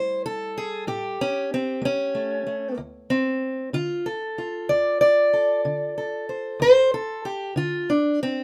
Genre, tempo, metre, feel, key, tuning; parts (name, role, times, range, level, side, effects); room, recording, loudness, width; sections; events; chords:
acoustic country blues, solo or duo; 63 BPM (dotted quarters); 12/8; straight; D minor; A4 = 441 Hz
fingerpicked acoustic archtop guitar; solo; 0.0-8.4 s; D2 to D5; -24 LUFS; equal
light reverb; -24 LUFS; mono
0.0-2.8 A section; 2.8-8.4 B section
steel-string acoustic guitar solo 2.8-8.4
0.0 A7; 2.8 Dm7